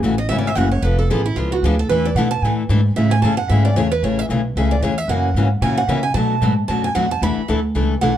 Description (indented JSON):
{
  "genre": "acoustic string swing (jazz manouche)",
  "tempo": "226 BPM",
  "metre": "4/4",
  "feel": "swing 57% on 8ths",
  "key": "A major",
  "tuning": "A4 = 435 Hz",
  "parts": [
    { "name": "picked steel-string acoustic guitar", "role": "accompaniment", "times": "0.0-8.1 s", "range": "B2 to A4", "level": "-21 LUFS", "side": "left 4 dB", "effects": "none" },
    { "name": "upright bass", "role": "bass", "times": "0.0-8.2 s", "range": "F1 to C#3", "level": "-19 LUFS", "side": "equal", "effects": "none" },
    { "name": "picked steel-string acoustic guitar", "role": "second line", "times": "0.2-8.2 s", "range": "E4 to B5", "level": "-22 LUFS", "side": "right 5 dB", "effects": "none" }
  ],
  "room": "moderate studio reverb, RT60 0.5 s",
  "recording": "dark, warm production",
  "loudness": "-16 LUFS",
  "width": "side -11 dB against mid",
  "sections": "0.0-4.0 A section; 4.0-8.2 A section",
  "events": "steel-string acoustic guitar solo 0.0-8.2",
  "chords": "0.0 F#m7; 0.8 Dm6/F; 1.9 E7sus4; 3.0 Amaj7; 5.1 F#7; 6.2 Bm7; 7.2 E7sus4"
}